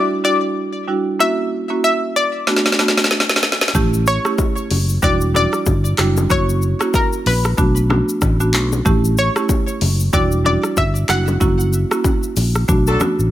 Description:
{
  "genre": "afrobeats",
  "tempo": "94 BPM",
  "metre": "4/4",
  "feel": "swing 58% on 16ths",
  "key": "B minor",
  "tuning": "A4 = 439 Hz",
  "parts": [
    { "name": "analog pluck", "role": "melody", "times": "0.0-13.0 s", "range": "A#4 to F#5", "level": "-20 LUFS", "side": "left 2 dB", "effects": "chorus, digital delay" },
    { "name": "marimba with medium mallets", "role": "accompaniment", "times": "0.0-13.2 s", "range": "G3 to G4", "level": "-20 LUFS", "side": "right 2 dB", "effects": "none" },
    { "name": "deep house drum kit", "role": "drums", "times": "2.5-13.3 s", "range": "handclaps, hi-hat, kick drum, rim click, shaker, snare drum", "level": "-19 LUFS", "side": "equal", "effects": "none" },
    { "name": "fingered electric bass", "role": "bass", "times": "3.7-13.3 s", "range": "E1 to B1", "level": "-17 LUFS", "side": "equal", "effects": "none" },
    { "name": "congas and bongos", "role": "percussion", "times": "3.8-13.2 s", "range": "none", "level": "-26 LUFS", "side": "left 3 dB", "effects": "none" },
    { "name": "warm horn section", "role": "second line", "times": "12.9-13.0 s", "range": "F#3 to A4", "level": "-21 LUFS", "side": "left 2 dB", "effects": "none" }
  ],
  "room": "studio reverb",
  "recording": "none",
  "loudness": "-14 LUFS",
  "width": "side -13 dB against mid",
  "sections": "0.0-13.3 A section",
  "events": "drum fill 2.5-3.7; band accent 11.4-13.3",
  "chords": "0.0 Em9; 1.2 F#7; 2.5 Bm7; 3.7 A7; 5.0 Em9; 6.3 F#7; 7.6 Bm7; 8.9 A7; 10.1 Em9; 11.4 F#7; 12.7 Bm7",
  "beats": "0.56 | 1.20 1.83 2.47 3.11 | 3.75 4.39 5.03 5.66 | 6.30 6.94 7.58 8.22 | 8.86 9.49 10.13 10.77 | 11.41 12.05 12.69"
}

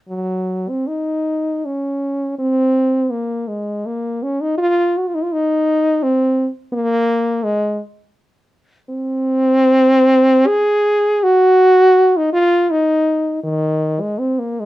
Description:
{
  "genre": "classical, free, expressive piece for unaccompanied French horn",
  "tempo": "65-88 BPM",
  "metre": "3/4",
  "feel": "rubato",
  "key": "Eb dorian",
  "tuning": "A4 = 440 Hz",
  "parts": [
    { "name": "mellow French horn", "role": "solo", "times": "0.1-14.7 s", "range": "Eb3 to Ab4", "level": "-14 LUFS", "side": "equal", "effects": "none" }
  ],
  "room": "light reverb",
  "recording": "none",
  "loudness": "-14 LUFS",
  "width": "side -16 dB against mid",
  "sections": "0.1-14.7 A section",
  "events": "none",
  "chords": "none",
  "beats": "| 0.09 0.89 1.66 | 2.39 3.12 3.87 | 4.59 5.33 6.04 | 6.72 7.44 8.17 | 8.88 9.60 10.46 | 11.22 11.97 12.72 | 13.45 14.20"
}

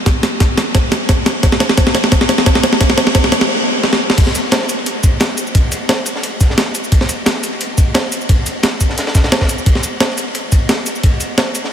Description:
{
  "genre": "drum and bass",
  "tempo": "175 BPM",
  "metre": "4/4",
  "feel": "swing 54% on 16ths",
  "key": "none",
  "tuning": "none",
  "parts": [
    { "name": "breakbeat sampler-style drum kit", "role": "drums", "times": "0.1-11.6 s", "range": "crash cymbal, hi-hat, shaker, snare drum", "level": "-14 LUFS", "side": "equal", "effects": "small room ambience" },
    { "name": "electronic kick drum", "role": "drums", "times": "0.1-11.1 s", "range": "none", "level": "-13 LUFS", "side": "equal", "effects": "small room ambience" },
    { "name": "crunchy breakbeat drum kit", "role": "drums", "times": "4.2-11.7 s", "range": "ride cymbal, snare drum", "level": "-23 LUFS", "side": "equal", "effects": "high-pass filter on cymbals, small room ambience, high-pass filter on snare, high-pass filter on room" }
  ],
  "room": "wet huge ambient reverb, RT60 7.8 s",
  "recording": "dreamy mix soaked in reverb",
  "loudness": "-12 LUFS",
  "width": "side -9 dB against mid",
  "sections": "0.0-4.2 A section; 4.2-11.7 B section",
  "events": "build-up 0.0-4.2; drum fill 0.0-3.5, 3.8-4.2; stop 3.5-4.2; drop 4.2-11.7",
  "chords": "none",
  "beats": "| 0.06 0.41 0.75 1.09 | 1.43 1.78 2.12 2.46 | 2.81 3.15 3.49 3.83 | 4.18 4.52 4.86 5.21 | 5.55 5.89 6.23 6.58 | 6.92 7.26 7.61 7.95 | 8.29 8.63 8.98 9.32 | 9.66 10.01 10.35 10.69 | 11.03 11.38"
}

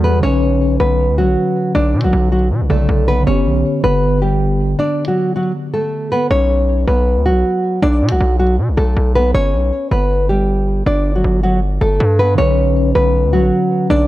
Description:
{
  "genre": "hip hop, trap",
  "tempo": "158 BPM",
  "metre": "4/4",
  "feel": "half-time",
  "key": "B minor",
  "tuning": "A4 = 440 Hz",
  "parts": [
    { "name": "nylon-string guitar", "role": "melody", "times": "0.0-14.1 s", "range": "F#3 to D5", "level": "-16 LUFS", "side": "equal", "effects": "none" },
    { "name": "mellow tine electric piano", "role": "accompaniment", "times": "0.0-6.3, 12.3-14.1 s", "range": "C#3 to D5", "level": "-20 LUFS", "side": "equal", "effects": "medium stereo tremolo" },
    { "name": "distorted 808-style bass", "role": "bass", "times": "0.0-14.1 s", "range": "G1 to B2", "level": "-15 LUFS", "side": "equal", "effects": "distortion" }
  ],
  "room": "little or no reverb",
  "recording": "none",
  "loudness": "-13 LUFS",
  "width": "side -15 dB against mid",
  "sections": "0.2-6.3 A section; 6.3-14.1 B section",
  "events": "break 4.8-6.3",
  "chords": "0.2 Bmadd9; 3.3 G; 6.3 Bsus2; 9.3 G; 12.4 Bmadd9",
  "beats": "| 0.23 0.61 0.99 1.37 | 1.75 2.13 2.51 2.89 | 3.27 3.65 4.03 4.41 | 4.79 5.17 5.55 5.93 | 6.31 6.69 7.07 7.45 | 7.83 8.21 8.59 8.96 | 9.34 9.72 10.10 10.48 | 10.86 11.24 11.62 12.00 | 12.38 12.76 13.14 13.52 | 13.90"
}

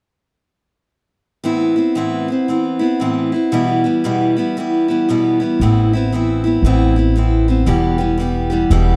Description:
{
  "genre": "folk",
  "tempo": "116 BPM",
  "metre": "4/4",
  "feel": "swing 62% on 8ths",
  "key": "A minor",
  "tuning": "A4 = 438 Hz",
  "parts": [
    { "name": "picked steel-string acoustic guitar", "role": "accompaniment", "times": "1.4-9.0 s", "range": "E2 to G4", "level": "-18 LUFS", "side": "equal", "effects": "none" },
    { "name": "upright bass", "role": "bass", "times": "5.6-9.0 s", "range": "E1 to A1", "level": "-18 LUFS", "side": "equal", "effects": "none" }
  ],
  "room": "light reverb",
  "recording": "dry, close 1970s-style studio recording",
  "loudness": "-16 LUFS",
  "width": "mono",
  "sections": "1.4-5.6 A section; 5.6-9.0 B section",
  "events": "none",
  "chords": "1.4 Amadd9; 3.5 Em; 5.6 Amadd9; 7.7 Em",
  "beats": "| 1.45 1.97 2.48 3.00 | 3.52 4.04 4.56 5.08 | 5.60 6.12 6.63 7.15 | 7.67 8.19 8.71"
}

